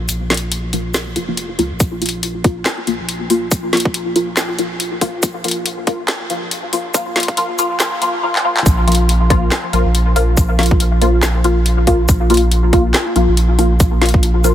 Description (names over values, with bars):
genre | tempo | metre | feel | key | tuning
deep dubstep | 140 BPM | 4/4 | swing 58% on 16ths, half-time | unclear | A4 = 439 Hz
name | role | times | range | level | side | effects
saturated sub bass | bass | 0.0-14.5 s | F1 to Db2 | -17 LUFS | equal | none
garage drum kit | drums | 0.1-14.5 s | handclaps, hi-hat, shaker, snare drum | -20 LUFS | left 1 dB | none
filtered dub chord stab | stabs | 0.3-14.5 s | F3 to F4 | -18 LUFS | left 1 dB | phaser, ensemble chorus, dub echo
electronic kick drum | drums | 1.8-14.2 s | none | -13 LUFS | equal | none
room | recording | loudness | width
light reverb | dense, heavily limited modern master, high-pass filter | -13 LUFS | side -11 dB against mid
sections
0.0-8.7 A section; 8.7-14.5 B section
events
build-up 0.0-8.7; filter sweep on synth stab 0.0-8.7; drum fill 8.3-8.7; drop 8.7-14.5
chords
0.0 Bb5